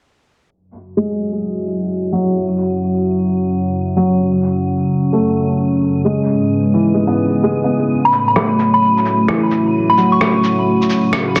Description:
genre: future garage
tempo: 130 BPM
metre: 4/4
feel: swing 65% on 16ths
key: F# dorian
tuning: A4 = 440 Hz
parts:
  - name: dark analog pad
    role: sustained chords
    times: 0.5-11.4 s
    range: F#3 to E5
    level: -19 LUFS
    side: equal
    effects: chorus
  - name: flickering grainy texture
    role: texture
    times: 3.1-11.4 s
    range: D#7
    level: -41 LUFS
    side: equal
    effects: built-in reverb
  - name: felt-muted upright piano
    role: accompaniment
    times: 1.0-11.4 s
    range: C#3 to B3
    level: -21 LUFS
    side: equal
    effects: low-pass filter, dub echo
  - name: soft synth bell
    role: melody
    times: 8.0-10.4 s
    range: B5 to C#6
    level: -18 LUFS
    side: equal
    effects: chorus, tape echo
  - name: electronic shaker and rim click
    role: drums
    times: 8.1-11.4 s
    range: none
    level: -22 LUFS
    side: equal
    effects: soft clipping on snare
room: wet recital hall reverb, RT60 1.4 s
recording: dense, heavily limited modern master, vinyl crackle, low-pass filter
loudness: -16 LUFS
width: mono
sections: 0.5-11.4 A section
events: filter sweep on analog synth pad 0.5-11.4; filter sweep on felt piano 0.5-11.4; filter sweep 0.5-11.4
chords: 0.5 F#5; 2.4 D#m7/F#; 4.2 F#m7; 6.0 Emaj7; 7.9 F#m7; 9.7 A6

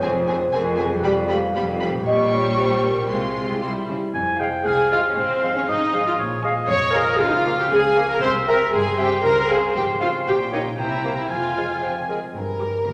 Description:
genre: cinematic, playful, whimsical film cue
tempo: 117 BPM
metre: 2/4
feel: straight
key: F minor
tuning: A4 = 440 Hz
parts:
  - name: rich studio violin section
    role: melody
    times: 0.0-12.8 s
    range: F5 to D6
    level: -33 LUFS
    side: equal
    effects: none
  - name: vibraphone with soft mallets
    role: melody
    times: 0.0-3.6 s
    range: Ab4 to F5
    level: -26 LUFS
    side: equal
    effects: none
  - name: rich studio violin section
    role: second line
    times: 0.0-12.9 s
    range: E4 to Db6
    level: -32 LUFS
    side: equal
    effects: none
  - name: rich studio viola section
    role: accompaniment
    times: 0.0-12.8 s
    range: G3 to Db5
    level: -24 LUFS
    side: equal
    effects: none
  - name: concert harp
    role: arpeggios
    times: 0.0-12.9 s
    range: F2 to Db5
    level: -32 LUFS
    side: equal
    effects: none
  - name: rich studio cello section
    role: bass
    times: 0.0-12.9 s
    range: C2 to Db3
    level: -33 LUFS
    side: equal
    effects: none
  - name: rich studio double bass section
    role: bass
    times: 0.0-12.8 s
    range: F1 to Db2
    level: -37 LUFS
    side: equal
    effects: none
  - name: clear oboe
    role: second line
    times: 4.1-12.1 s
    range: C5 to Ab5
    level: -26 LUFS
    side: equal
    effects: none
  - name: warm clarinet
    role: second line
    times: 4.4-12.2 s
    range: Bb4 to F5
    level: -34 LUFS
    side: equal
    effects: none
  - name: warm bassoon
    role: accompaniment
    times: 4.4-12.2 s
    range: Ab3 to C4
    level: -34 LUFS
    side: equal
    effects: none
room: wet scoring stage reverb, RT60 1.9 s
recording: none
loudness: -21 LUFS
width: mono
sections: 0.0-4.1 A section; 4.1-12.3 B section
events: none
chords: 0.0 Fm; 1.0 G7/F; 2.1 Gdim/Bb; 3.1 Fm/C; 3.6 C; 4.1 Fm; 5.2 Fm/Ab; 6.2 Bb5; 7.2 Bbm/Db; 8.2 C; 9.2 Dbmaj7; 10.3 Gdim/Bb; 10.8 C7; 11.3 Fm; 12.3 Gm

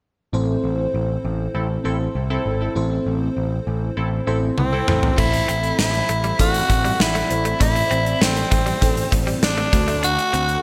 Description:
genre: 1980s-style pop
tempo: 99 BPM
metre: 4/4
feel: straight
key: A dorian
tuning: A4 = 440 Hz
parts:
  - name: FM electric piano with soft pad layer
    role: accompaniment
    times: 0.3-10.6 s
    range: A2 to D5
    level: -28 LUFS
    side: equal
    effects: chorus, phaser
  - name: overdriven picked electric bass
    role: bass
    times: 0.3-10.6 s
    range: G#1 to D2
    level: -26 LUFS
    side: equal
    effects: none
  - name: funky polysynth comp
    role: stabs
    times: 1.5-5.2 s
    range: C4 to A4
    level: -32 LUFS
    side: equal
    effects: chorus, digital delay
  - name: raspy tenor saxophone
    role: melody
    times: 4.6-10.6 s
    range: C4 to F#4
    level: -24 LUFS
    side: equal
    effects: none
  - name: gated 80s drum kit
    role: drums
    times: 4.6-10.6 s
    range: crash cymbal, hi-hat, kick drum, snare drum, toms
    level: -23 LUFS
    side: equal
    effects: gated reverb
  - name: direct-recorded clean electric guitar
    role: riff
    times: 5.2-10.4 s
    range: G3 to D4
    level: -32 LUFS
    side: equal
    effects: lush chorus, digital delay
room: moderate plate reverb, RT60 2.8 s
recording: bright 1980s-style digital production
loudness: -20 LUFS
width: mono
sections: 0.3-5.2 A section; 5.2-10.6 B section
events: drum fill 4.6-5.2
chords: 0.3 Am; 9.7 D

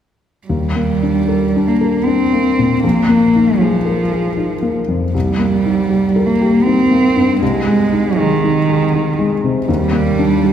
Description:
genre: neoclassical piano and strings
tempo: 78 BPM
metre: 3/4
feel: rubato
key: Eb major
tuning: A4 = 437 Hz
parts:
  - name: warm cello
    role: second line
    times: 0.5-10.5 s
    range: Eb3 to C4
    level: -14 LUFS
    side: right 2 dB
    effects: none
  - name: felt-muted upright piano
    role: accompaniment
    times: 0.5-10.5 s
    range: Bb1 to Bb4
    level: -16 LUFS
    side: left 3 dB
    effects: none
room: wet church reverb, RT60 3.0 s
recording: recorded in a church or concert hall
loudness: -12 LUFS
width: side -9 dB against mid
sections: 0.5-10.5 A section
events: none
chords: 0.5 Ebmaj7; 2.8 Bb7sus4; 5.1 Cm7; 7.4 Ab/C; 9.7 Ebmaj7

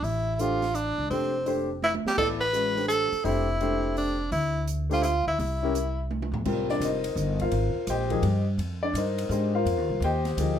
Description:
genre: modal jazz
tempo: 168 BPM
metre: 3/4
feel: swing 65% on 8ths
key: D dorian, F dorian from 6.5 s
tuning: A4 = 440 Hz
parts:
  - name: breathy tenor saxophone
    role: melody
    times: 0.0-6.1 s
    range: C4 to B4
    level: -26 LUFS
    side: right 1 dB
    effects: plate reverb
  - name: upright bass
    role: bass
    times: 0.0-10.6 s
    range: F1 to Ab2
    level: -29 LUFS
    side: equal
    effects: none
  - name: open jazz drum kit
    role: drums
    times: 0.0-10.5 s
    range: crash cymbal, hi-hat, kick drum, ride cymbal, snare drum, toms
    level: -38 LUFS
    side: right 3 dB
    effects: none
  - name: warm grand piano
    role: accompaniment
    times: 0.4-10.6 s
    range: F3 to G5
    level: -28 LUFS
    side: left 2 dB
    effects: none
room: moderate studio reverb, RT60 0.6 s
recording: none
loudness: -24 LUFS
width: side -9 dB against mid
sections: 0.0-6.5 A section; 6.5-10.6 B section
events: drum fill 1.8-2.2, 6.1-6.5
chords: 0.0 Dm11; 5.4 C; 6.5 Fm11

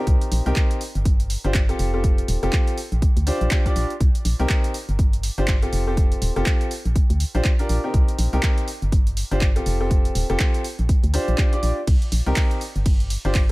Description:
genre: piano house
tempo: 122 BPM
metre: 4/4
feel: swing 59% on 16ths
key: C dorian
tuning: A4 = 439 Hz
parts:
  - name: clear grand piano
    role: riff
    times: 0.0-13.5 s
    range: C4 to D5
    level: -27 LUFS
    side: left 1 dB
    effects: sidechain pumping, dub echo
  - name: organ-like FM bass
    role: bass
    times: 0.1-13.5 s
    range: Eb1 to D2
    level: -22 LUFS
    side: equal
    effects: sidechain pumping
  - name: electronic kick drum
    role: drums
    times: 0.1-13.5 s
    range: none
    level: -19 LUFS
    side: equal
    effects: none
  - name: punchy analog drum machine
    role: drums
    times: 0.1-13.5 s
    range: handclaps, hi-hat, ride cymbal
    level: -29 LUFS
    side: right 1 dB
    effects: overdrive
room: little or no reverb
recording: none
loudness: -18 LUFS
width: side -21 dB against mid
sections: 0.0-13.5 A section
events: none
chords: 0.1 Cm7; 0.8 G5; 1.8 Fadd9; 2.8 Bb6; 4.0 Cm7; 4.7 G5; 5.7 Fadd9; 6.7 Bb6; 7.9 Cm7; 8.7 G5; 9.7 Fadd9; 10.6 Bb6; 11.9 Cm7; 12.6 G5

